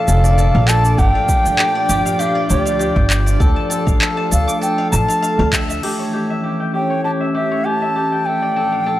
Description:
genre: organic downtempo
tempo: 99 BPM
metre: 4/4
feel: swing 54% on 16ths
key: A phrygian dominant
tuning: A4 = 437 Hz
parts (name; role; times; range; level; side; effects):
- bright reedy bansuri; melody; 0.0-9.0 s; D5 to Bb5; -20 LUFS; equal; analog delay
- airy breathy pad; sustained chords; 0.0-9.0 s; Bb2 to D5; -22 LUFS; left 1 dB; chorus, sidechain pumping
- steel-string zither; arpeggios; 0.0-9.0 s; G4 to D6; -23 LUFS; left 1 dB; low-pass filter, tape echo
- bronze singing bowl; texture; 0.0-9.0 s; A3 to A4; -32 LUFS; right 1 dB; none
- upright bass; bass; 0.1-5.8 s; F1 to G2; -16 LUFS; equal; sidechain pumping
- organic electronic drum kit; drums; 0.1-6.0 s; cabasa, crash cymbal, handclaps; -21 LUFS; right 1 dB; overdrive
- electronic kick drum; drums; 1.0-5.7 s; none; -17 LUFS; equal; none
room: light reverb, small room ambience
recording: dry, gritty hardware recording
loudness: -14 LUFS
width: side -14 dB against mid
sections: 0.0-5.8 A section; 5.8-9.0 B section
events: band accent 5.5-5.8; filter sweep on analog synth pad 5.8-9.0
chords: 0.0 Bbmaj7; 1.0 Gm7; 3.4 Dm; 5.8 A7; 8.3 Bbmaj7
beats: 0.38 | 0.99 1.59 2.20 2.81 | 3.41 4.02 4.62 5.23 | 5.83 6.44 7.05 7.65 | 8.26 8.87

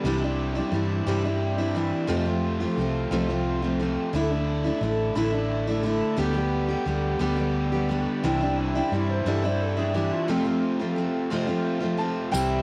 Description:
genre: folk rock and heartland rock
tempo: 59 BPM (dotted quarters)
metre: 6/8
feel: straight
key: unclear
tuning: A4 = 440 Hz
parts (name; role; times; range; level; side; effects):
- picked steel-string acoustic guitar; accompaniment; 0.0-12.6 s; F2 to G4; -28 LUFS; equal; cassette tape
- overdriven electric guitar; riff; 0.0-12.6 s; F2 to G4; -34 LUFS; equal; cassette tape
- hollow-body short-scale fingered electric bass; bass; 0.0-12.6 s; A1 to G2; -30 LUFS; equal; none
- electric slide guitar; second line; 8.3-10.6 s; C4 to G5; -33 LUFS; equal; cassette tape
- warm grand piano; melody; 12.0-12.6 s; G5 to A5; -31 LUFS; equal; cassette tape
- tambourine; percussion; 12.3-12.5 s; none; -38 LUFS; equal; none
room: light reverb, small room ambience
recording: home recording on cassette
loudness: -26 LUFS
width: mono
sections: 0.0-12.3 A section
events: none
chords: 0.0 Cadd9; 2.1 F; 4.1 Dsus2; 6.2 G/D; 8.2 Cadd9; 10.3 F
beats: | 0.04 1.06 | 2.09 3.11 | 4.14 5.16 | 6.18 7.21 | 8.23 9.26 | 10.29 11.31 | 12.33

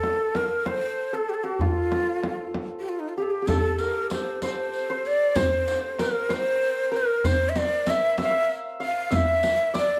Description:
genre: Persian modal ensemble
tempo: 64 BPM (dotted quarters)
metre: 6/8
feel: straight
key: F dastgah homayun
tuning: A4 = 441 Hz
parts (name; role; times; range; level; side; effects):
- breathy bright ney; melody; 0.0-10.0 s; Eb4 to F5; -27 LUFS; equal; none
- santur; second line; 0.0-10.0 s; F4 to F5; -32 LUFS; equal; none
- frame drum; percussion; 0.0-9.9 s; none; -33 LUFS; equal; none
- tombak; percussion; 0.0-10.0 s; none; -33 LUFS; equal; none
- riq; percussion; 3.5-9.9 s; none; -39 LUFS; equal; none
room: wet studio reverb, RT60 0.6 s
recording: heard from further back in the room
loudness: -25 LUFS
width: mono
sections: 0.0-3.5 A section; 3.5-10.0 B section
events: none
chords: none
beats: 0.66 | 1.60 2.54 | 3.48 4.42 | 5.36 6.30 | 7.24 8.18 | 9.12

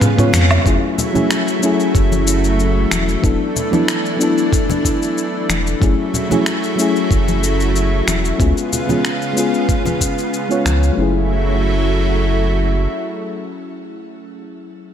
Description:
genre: sunset chillout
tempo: 93 BPM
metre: 4/4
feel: straight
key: F# minor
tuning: A4 = 441 Hz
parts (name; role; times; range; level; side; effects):
- mellow FM electric piano; accompaniment; 0.0-14.9 s; F#3 to C#5; -19 LUFS; moving between left 6 dB and right 3 dB; chorus, auto-pan, low-pass filter, ping-pong delay, shimmer reverb
- lush unison pad; sustained chords; 0.0-14.2 s; C#3 to E#4; -21 LUFS; equal; chorus, shimmer reverb
- dusty soul sampler-style drum kit; drums; 0.0-10.9 s; finger snaps, hi-hat, shaker, toms, woodblock; -20 LUFS; left 1 dB; none
- warm sub bass; bass; 0.3-12.9 s; E1 to E#2; -18 LUFS; equal; none
- congas; percussion; 0.3-10.8 s; none; -25 LUFS; left 4 dB; none
- electronic kick drum; drums; 0.7-10.1 s; none; -17 LUFS; equal; none
room: moderate lush hall reverb, RT60 1.6 s, digital ambience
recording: none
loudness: -14 LUFS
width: side -9 dB against mid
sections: 0.7-11.0 A section; 11.0-13.6 B section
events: drum fill 0.0-0.7; band accent 0.3-0.7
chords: 0.0 C#7; 0.7 F#m7; 3.2 E7sus4; 5.8 F#m7; 8.4 C#7; 11.0 F#m7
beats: 0.01 | 0.66 1.30 1.95 2.59 | 3.23 3.88 4.53 5.17 | 5.82 6.46 7.11 7.75 | 8.40 9.04 9.69 10.33 | 10.98 11.62 12.27 12.91

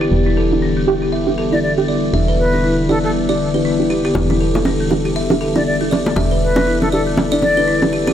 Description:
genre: afro house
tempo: 119 BPM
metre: 4/4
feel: swing 58% on 16ths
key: E minor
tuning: A4 = 440 Hz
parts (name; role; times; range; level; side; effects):
- warm analog pad; sustained chords; 0.0-8.1 s; D3 to A4; -21 LUFS; left 2 dB; wide subtle chorus
- buzzing kalimba; arpeggios; 0.0-8.1 s; B3 to E5; -19 LUFS; equal; low-pass filter, dub echo
- deep mellow chord stab; stabs; 0.0-8.1 s; D4 to G4; -22 LUFS; right 3 dB; chorus, dub echo
- woody FM bass; bass; 0.0-8.1 s; E1; -22 LUFS; equal; none
- mellow silver concert flute; melody; 1.5-7.8 s; A4 to D5; -21 LUFS; left 2 dB; dub echo
- bongos; percussion; 4.2-8.1 s; none; -20 LUFS; right 1 dB; none
room: light reverb, digital ambience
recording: none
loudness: -14 LUFS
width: side -10 dB against mid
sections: 0.0-8.1 A section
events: filter sweep on analog synth pad 0.0-8.1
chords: 0.0 Em7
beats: | 0.12 0.62 1.13 1.63 | 2.13 2.64 3.14 3.65 | 4.15 4.66 5.16 5.66 | 6.17 6.67 7.18 7.68

